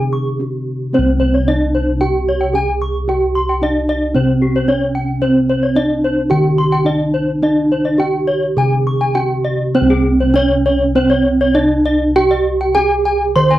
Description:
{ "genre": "Balinese gamelan", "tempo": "100-112 BPM", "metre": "4/4", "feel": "straight", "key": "C pelog", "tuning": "A4 = 440 Hz", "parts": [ { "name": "gamelan-type bronze metallophone", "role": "melody", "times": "0.0-13.6 s", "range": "C4 to C5", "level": "-16 LUFS", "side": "right 2 dB", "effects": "none" }, { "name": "gamelan-type bossed gongs", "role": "bass", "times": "0.0-13.6 s", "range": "C2 to G4-45c", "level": "-18 LUFS", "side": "left 1 dB", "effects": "none" }, { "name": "gamelan-type bronze metallophone", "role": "arpeggios", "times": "0.1-13.6 s", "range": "G4-45c to Db6", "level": "-18 LUFS", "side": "left 2 dB", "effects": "none" } ], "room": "light reverb", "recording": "dry, close 1970s-style studio recording", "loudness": "-13 LUFS", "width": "side -14 dB against mid", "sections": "0.0-9.8 A section; 9.8-13.6 B section", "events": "break 0.1-0.9", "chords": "none" }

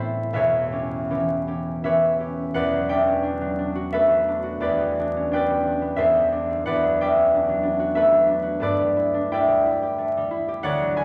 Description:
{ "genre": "classical, solo harp piece", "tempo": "79-94 BPM", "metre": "3/4", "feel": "rubato", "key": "E dorian", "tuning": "A4 = 440 Hz", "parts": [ { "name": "concert harp", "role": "solo", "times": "0.0-11.0 s", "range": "E1 to G#5", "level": "-22 LUFS", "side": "equal", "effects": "none" } ], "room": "wet recital hall reverb, RT60 1.6 s", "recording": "vinyl crackle", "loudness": "-22 LUFS", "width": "mono", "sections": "0.0-2.5 A section; 2.5-11.0 B section", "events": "none", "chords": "0.3 Em6; 2.5 Em11; 4.6 Gmaj7/E; 6.0 D9sus4/E; 6.7 Em11; 8.6 G69" }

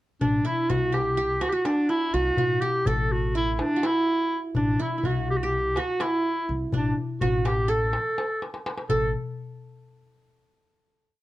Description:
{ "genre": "Turkish makam ensemble", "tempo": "249 BPM (eighths)", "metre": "9/8", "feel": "straight", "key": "A makam huseyni", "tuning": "A4 = 440 Hz", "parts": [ { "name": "bright clarinet", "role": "melody", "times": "0.2-9.1 s", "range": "D4 to A4", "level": "-25 LUFS", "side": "equal", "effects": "none" }, { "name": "qanun", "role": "second line", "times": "0.2-9.1 s", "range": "D4 to A4", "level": "-30 LUFS", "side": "right 3 dB", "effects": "none" }, { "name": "upright bass", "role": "bass", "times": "0.2-9.1 s", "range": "A1 to C2", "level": "-29 LUFS", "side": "equal", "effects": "none" }, { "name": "darbuka", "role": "percussion", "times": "0.2-9.1 s", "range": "none", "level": "-30 LUFS", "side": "left 4 dB", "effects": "none" } ], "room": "light reverb", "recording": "worn, warbling old tape, cassette tape, warbly pitch drift", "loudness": "-23 LUFS", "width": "side -16 dB against mid", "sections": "0.2-8.9 A section; 8.9-11.1 final note", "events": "drum fill 8.4-8.9", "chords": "none" }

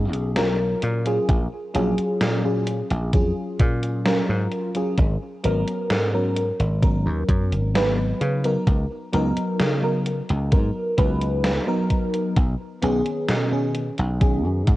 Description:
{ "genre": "vaporwave", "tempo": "65 BPM", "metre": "4/4", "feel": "straight", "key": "unclear", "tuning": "A4 = 440 Hz", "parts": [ { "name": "FM electric piano with soft pad layer", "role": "accompaniment", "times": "0.0-14.8 s", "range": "D#3 to Cb5", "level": "-24 LUFS", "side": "equal", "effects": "phaser, wide subtle chorus, tape echo" }, { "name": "dry thumbed slap bass", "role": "bass", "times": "0.0-14.8 s", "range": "Ab1 to Db3", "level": "-24 LUFS", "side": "equal", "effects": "tube saturation" }, { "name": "gated 80s digital drum machine", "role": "drums", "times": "0.1-14.8 s", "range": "hi-hat, snare drum", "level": "-27 LUFS", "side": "equal", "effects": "gated reverb, gated reverb snare, overdrive, small room reverb" }, { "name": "electronic kick drum", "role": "drums", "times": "1.3-14.8 s", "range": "none", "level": "-20 LUFS", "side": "equal", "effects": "overdrive, small room reverb" } ], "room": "light reverb", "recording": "worn, warbling old tape, cassette tape, warbly pitch drift", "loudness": "-20 LUFS", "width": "side -17 dB against mid", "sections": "0.0-14.8 A section", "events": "none", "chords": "0.0 B69; 0.8 Gbmaj9/Bb; 5.0 Abm11; 8.2 Db13sus4; 12.4 B69" }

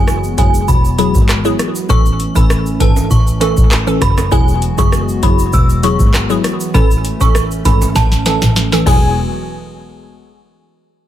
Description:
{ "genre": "dancehall", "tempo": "99 BPM", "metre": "4/4", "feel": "straight", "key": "E major", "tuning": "A4 = 440 Hz", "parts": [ { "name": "synth chime", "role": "melody", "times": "0.0-9.1 s", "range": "G#5 to E6", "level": "-20 LUFS", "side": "right 1 dB", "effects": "ensemble chorus, phaser, analog delay" }, { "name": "glassy wavetable pluck", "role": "accompaniment", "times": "0.0-9.1 s", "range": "E3 to A4", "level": "-18 LUFS", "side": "equal", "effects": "chorus, analog delay" }, { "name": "hollow soft pad", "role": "sustained chords", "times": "0.0-9.1 s", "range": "E3 to F#4", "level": "-22 LUFS", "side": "equal", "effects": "chorus, sidechain pumping" }, { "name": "rich double bass", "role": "bass", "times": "0.0-9.1 s", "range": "E1 to A1", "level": "-16 LUFS", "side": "equal", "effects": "none" }, { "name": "booming analog drum machine", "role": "drums", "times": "0.1-9.1 s", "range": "crash cymbal, handclaps, hi-hat, kick drum, rim click, shaker, snare drum", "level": "-14 LUFS", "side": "equal", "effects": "none" }, { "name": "egg shaker and timbales", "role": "percussion", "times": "0.1-9.2 s", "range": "none", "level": "-29 LUFS", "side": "right 5 dB", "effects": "analog delay" }, { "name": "warm velvety synth lead", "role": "second line", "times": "8.9-9.1 s", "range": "G#5", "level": "-27 LUFS", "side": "equal", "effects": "chorus, analog delay" } ], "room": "little or no reverb", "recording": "echo-heavy mix", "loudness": "-10 LUFS", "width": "side -12 dB against mid", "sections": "0.0-9.2 A section; 9.2-11.1 B section", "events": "drum fill 8.0-9.2", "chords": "0.0 Eadd9; 1.9 A; 4.3 Eadd9; 6.7 A; 8.9 Eadd9; 9.2 N.C." }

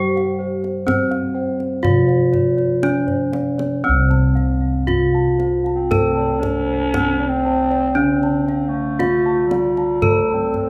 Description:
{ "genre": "Javanese gamelan", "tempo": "58-64 BPM", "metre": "4/4", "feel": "straight", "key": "C pelog barang", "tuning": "A4 = 440 Hz", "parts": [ { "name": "gamelan-type bronze metallophone", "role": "melody", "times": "0.0-10.7 s", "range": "C4 to A4+20c", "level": "-21 LUFS", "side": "equal", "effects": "none" }, { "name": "gamelan-type bronze metallophone", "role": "accompaniment", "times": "0.0-10.7 s", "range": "C3 to A3+20c", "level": "-29 LUFS", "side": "equal", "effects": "none" }, { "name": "gamelan-type bossed gongs", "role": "arpeggios", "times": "0.0-10.7 s", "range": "C5 to A5+20c", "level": "-30 LUFS", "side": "equal", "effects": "none" }, { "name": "gamelan-type bronze metallophone", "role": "arpeggios", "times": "0.0-10.7 s", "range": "C5 to A5+20c", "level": "-34 LUFS", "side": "equal", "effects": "none" }, { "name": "gamelan-type bossed gongs", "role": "bass", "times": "0.0-10.7 s", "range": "C2 to G4-40c", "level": "-26 LUFS", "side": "equal", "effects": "none" }, { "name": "kendang", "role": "percussion", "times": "0.2-10.7 s", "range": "none", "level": "-28 LUFS", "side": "equal", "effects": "none" }, { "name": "growling clarinet", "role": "second line", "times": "5.7-10.7 s", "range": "G3-38c to D4-48c", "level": "-25 LUFS", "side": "equal", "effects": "none" } ], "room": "wet recital hall reverb, RT60 1.4 s", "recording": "none", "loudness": "-18 LUFS", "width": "mono", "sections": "0.0-3.8 A section; 3.8-10.7 B section", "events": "drum fill 3.1-3.8", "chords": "none" }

